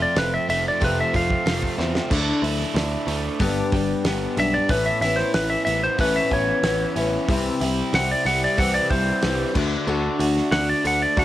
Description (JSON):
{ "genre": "folk rock and heartland rock", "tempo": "93 BPM", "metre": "4/4", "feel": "straight", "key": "unclear", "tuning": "A4 = 439 Hz", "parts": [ { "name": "clean lap steel guitar", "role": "melody", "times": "0.0-11.2 s", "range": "B4 to F#5", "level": "-22 LUFS", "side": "equal", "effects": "cassette tape" }, { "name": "picked steel-string acoustic guitar", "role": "accompaniment", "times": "0.0-11.2 s", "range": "F2 to G4", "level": "-25 LUFS", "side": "left 4 dB", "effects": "cassette tape" }, { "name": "crunchy overdriven guitar", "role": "riff", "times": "0.0-11.2 s", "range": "F2 to F#4", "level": "-27 LUFS", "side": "right 2 dB", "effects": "cassette tape" }, { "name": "picked electric bass", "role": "bass", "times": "0.0-11.2 s", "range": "F1 to E2", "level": "-27 LUFS", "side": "equal", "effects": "none" }, { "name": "damped 70s drum kit", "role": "drums", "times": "0.2-11.2 s", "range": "crash cymbal, hi-hat, kick drum, snare drum", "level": "-27 LUFS", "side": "right 1 dB", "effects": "cassette tape" } ], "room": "light reverb", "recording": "home recording on cassette", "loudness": "-19 LUFS", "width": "side -14 dB against mid", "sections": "0.0-11.2 A section", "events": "electric slide guitar solo 0.0-11.2; drum fill 1.8-2.1", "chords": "0.0 F; 2.1 Dsus2; 3.4 G; 4.7 Aadd9; 7.3 C; 9.6 D" }